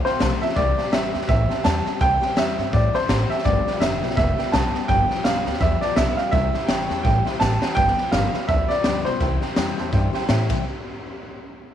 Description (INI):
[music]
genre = rockabilly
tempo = 167 BPM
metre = 4/4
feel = swing 59% on 8ths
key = C major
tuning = A4 = 440 Hz
[part]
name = warm upright piano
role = melody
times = 0.0-10.2 s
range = C5 to A5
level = -23 LUFS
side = right 2 dB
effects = none
[part]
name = picked steel-string acoustic guitar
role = accompaniment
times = 0.0-10.6 s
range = F2 to G4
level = -28 LUFS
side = left 12 dB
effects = none
[part]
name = honky-tonk upright piano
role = accompaniment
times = 0.1-10.6 s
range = B4 to A5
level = -33 LUFS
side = right 13 dB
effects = none
[part]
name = upright bass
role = bass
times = 0.1-10.6 s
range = F1 to A2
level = -24 LUFS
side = equal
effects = none
[part]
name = raw garage drum kit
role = drums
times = 0.1-10.6 s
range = crash cymbal, hi-hat, kick drum, snare drum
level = -24 LUFS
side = equal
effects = none
[sound]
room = light reverb, small room ambience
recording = 1960s-style stereo with parts hard left and right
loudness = -18 LUFS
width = side -10 dB against mid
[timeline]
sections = 0.0-7.8 A section; 7.8-10.6 B section; 10.6-11.7 C section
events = drum fill 7.4-7.8, 10.5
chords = 0.0 F; 0.6 C; 3.5 G7; 6.3 C; 7.8 G7; 9.2 C; 10.6 N.C.